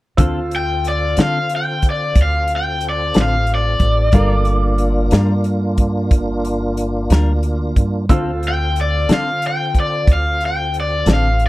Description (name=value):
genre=slow blues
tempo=61 BPM (dotted quarters)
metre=12/8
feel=straight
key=D minor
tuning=A4 = 441 Hz
part: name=bright upright piano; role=accompaniment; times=0.2-11.5 s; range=F4 to E6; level=-28 LUFS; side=right 2 dB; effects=none
part: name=clean electric guitar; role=accompaniment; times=0.2-11.3 s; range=D3 to Bb4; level=-20 LUFS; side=left 3 dB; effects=harmonic tremolo
part: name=tonewheel organ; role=sustained chords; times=0.2-11.5 s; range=Bb3 to A4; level=-25 LUFS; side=equal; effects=overdrive, chorus vibrato, slow rotary speaker
part: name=upright bass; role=bass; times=0.2-11.5 s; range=G1 to D3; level=-19 LUFS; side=equal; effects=none
part: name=natural country drum kit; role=drums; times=0.2-11.5 s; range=hi-hat, kick drum, snare drum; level=-15 LUFS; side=equal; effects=none
part: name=cranked stack guitar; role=melody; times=0.6-11.5 s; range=D5 to G5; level=-19 LUFS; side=left 2 dB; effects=overdrive, spring reverb
room=little or no reverb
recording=dry, close 1970s-style studio recording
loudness=-14 LUFS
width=side -17 dB against mid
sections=0.2-11.5 A section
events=none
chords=0.2 Dm7; 4.1 Gm7; 8.1 Dm7